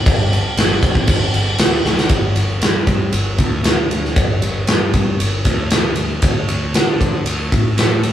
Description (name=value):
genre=classic rock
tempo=116 BPM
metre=4/4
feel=straight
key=unclear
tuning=A4 = 440 Hz
part: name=fuzz picked electric bass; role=bass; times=0.1-8.1 s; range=E1 to D3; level=-20 LUFS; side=equal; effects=overdrive
part: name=big rock drum kit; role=drums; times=0.1-8.1 s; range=crash cymbal, kick drum, ride cymbal, snare drum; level=-15 LUFS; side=equal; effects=none
room=light reverb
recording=band playing live in one room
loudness=-14 LUFS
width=side -11 dB against mid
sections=0.0-2.1 A section; 2.1-8.1 B section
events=drum fill 1.9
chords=none